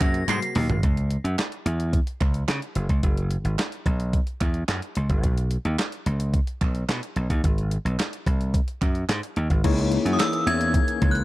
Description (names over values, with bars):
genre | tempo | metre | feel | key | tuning
early-eighties boogie funk | 109 BPM | 4/4 | straight | C# dorian | A4 = 440 Hz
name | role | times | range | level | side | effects
metallic FM bell | melody | 0.0-0.7, 10.1-11.2 s | D#6 to B#6 | -27 LUFS | equal | chorus
tine electric piano | accompaniment | 0.0-0.8, 9.6-11.2 s | A#3 to C#5 | -28 LUFS | left 5 dB | medium stereo tremolo
brassy analog pad | sustained chords | 0.0-0.8, 9.6-11.2 s | B#2 to A#4 | -33 LUFS | left 1 dB | chorus
slap bass | bass | 0.0-11.2 s | F#1 to C#3 | -24 LUFS | equal | none
crisp 8-bit digital drum machine | drums | 0.0-11.2 s | crash cymbal, handclaps, hi-hat, kick drum, snare drum, toms | -25 LUFS | equal | none
group handclap | percussion | 0.0-10.3 s | none | -36 LUFS | right 13 dB | none
room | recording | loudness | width
digital ambience | none | -22 LUFS | side -17 dB against mid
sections
0.8-9.6 A section; 9.6-11.2 B section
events
drum fill 0.3-0.8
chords
0.0 G#9; 0.8 C#m; 2.8 F#7sus4; 5.2 Bsus2; 7.4 G#7; 9.6 C#m69